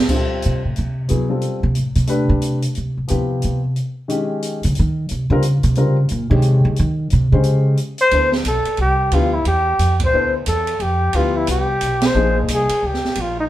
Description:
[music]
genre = modal jazz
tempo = 179 BPM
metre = 3/4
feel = swing 62% on 8ths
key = D dorian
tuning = A4 = 440 Hz
[part]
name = warm baby grand piano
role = accompaniment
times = 0.1-12.7 s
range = Eb3 to Db5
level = -22 LUFS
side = left 2 dB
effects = none
[part]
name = open jazz drum kit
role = drums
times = 0.1-13.3 s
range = crash cymbal, hi-hat, kick drum, ride cymbal, snare drum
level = -25 LUFS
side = right 2 dB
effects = none
[part]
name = upright bass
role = bass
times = 0.5-13.5 s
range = Bb1 to Eb3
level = -18 LUFS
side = equal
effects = none
[part]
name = breathy trumpet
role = melody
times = 8.0-13.4 s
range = Eb4 to C5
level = -18 LUFS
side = left 1 dB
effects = none
[sound]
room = wet studio reverb, RT60 0.8 s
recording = band playing live in one room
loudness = -15 LUFS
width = side -14 dB against mid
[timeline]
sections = 0.1-8.1 A section; 8.1-13.5 B section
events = upright bass solo 0.1-8.1; band accent 10.0, 12.0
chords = 0.1 Dm11; 4.1 Bbm11 (rootless); 8.1 Dm11; 12.1 Bbm11

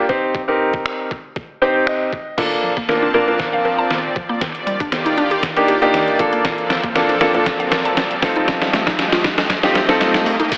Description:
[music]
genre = dance-pop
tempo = 118 BPM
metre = 4/4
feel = straight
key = Bb major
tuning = A4 = 440 Hz
[part]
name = clear concert grand piano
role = accompaniment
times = 0.0-10.3 s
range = Bb3 to G5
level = -17 LUFS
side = equal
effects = sidechain pumping
[part]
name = detuned 8-bit digital drum machine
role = drums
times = 0.1-10.6 s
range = crash cymbal, finger snaps, hi-hat, kick drum, snare drum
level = -20 LUFS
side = equal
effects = none
[part]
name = supersaw pad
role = sustained chords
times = 2.7-10.6 s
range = Eb2 to A5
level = -22 LUFS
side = equal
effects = sidechain pumping
[part]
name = mallet-like synth pluck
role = arpeggios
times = 2.4-10.5 s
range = Bb2 to A5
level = -24 LUFS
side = equal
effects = chorus, sidechain pumping, tape echo
[part]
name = riser and downlifter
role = sound effects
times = 4.8-10.6 s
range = none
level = -28 LUFS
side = equal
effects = none
[sound]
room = light reverb, digital ambience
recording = heavily compressed radio sound, AM radio sound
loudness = -15 LUFS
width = side -27 dB against mid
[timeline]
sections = 0.0-2.4 A section; 2.4-10.5 B section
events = grand piano fill 1.4-2.4; build-up 2.4-10.5; drum fill 2.4-10.5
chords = 0.1 Cm; 2.4 Bbmaj7; 4.4 Ebmaj7; 6.2 Bbmaj7; 8.2 F7

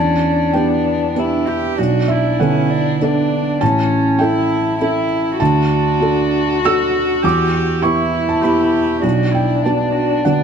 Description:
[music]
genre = neoclassical piano and strings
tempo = 99 BPM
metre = 3/4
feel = rubato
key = E dorian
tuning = A4 = 440 Hz
[part]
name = dark violin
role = melody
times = 0.0-10.4 s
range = C#4 to F#4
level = -20 LUFS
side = left 5 dB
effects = none
[part]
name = dark cello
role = second line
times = 0.0-10.4 s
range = B3 to G4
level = -22 LUFS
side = right 7 dB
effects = none
[part]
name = felt-muted upright piano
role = accompaniment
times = 0.0-10.4 s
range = A1 to E6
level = -16 LUFS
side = right 2 dB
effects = none
[sound]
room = light reverb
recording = close, detailed microphones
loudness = -14 LUFS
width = side -7 dB against mid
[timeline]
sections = 0.0-10.4 A section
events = none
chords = 0.0 Em7; 1.8 Bm7; 3.6 A7; 5.4 D; 7.2 Em7; 9.0 Bm7

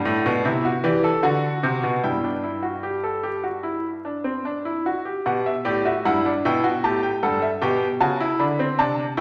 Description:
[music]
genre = classical, baroque-style 3-part fugue for grand piano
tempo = 76 BPM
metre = 4/4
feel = straight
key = G major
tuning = A4 = 438 Hz
[part]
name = bright concert grand piano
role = solo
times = 0.0-9.2 s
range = G2 to B5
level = -23 LUFS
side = equal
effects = none
[sound]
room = wet recital hall reverb, RT60 1.3 s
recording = vinyl crackle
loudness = -23 LUFS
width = mono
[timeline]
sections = 0.0-5.2 A section; 5.2-9.2 B section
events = none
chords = 0.4 Am/C; 1.2 D7; 2.0 G5; 5.2 G; 6.8 A7; 8.4 D5

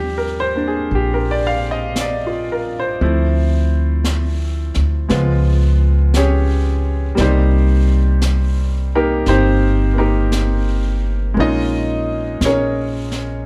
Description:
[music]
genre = jazz ballad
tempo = 57 BPM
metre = 4/4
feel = swing 67% on 8ths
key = Eb major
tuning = A4 = 440 Hz
[part]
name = clear concert grand piano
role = accompaniment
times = 0.0-13.5 s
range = F3 to F5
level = -22 LUFS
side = equal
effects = none
[part]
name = upright bass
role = bass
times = 0.0-13.4 s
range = G1 to Eb2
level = -19 LUFS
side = equal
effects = none
[part]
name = jazz brush drum kit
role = drums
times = 0.9-13.5 s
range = brushed snare drum, hi-hat, snare drum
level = -30 LUFS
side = equal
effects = none
[sound]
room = little or no reverb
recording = none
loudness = -17 LUFS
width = mono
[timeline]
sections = 0.0-13.5 A section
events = none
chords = 0.0 Ebmaj13; 3.0 Dm9; 5.1 Db7#11; 7.2 Cm7; 11.4 Bbm7

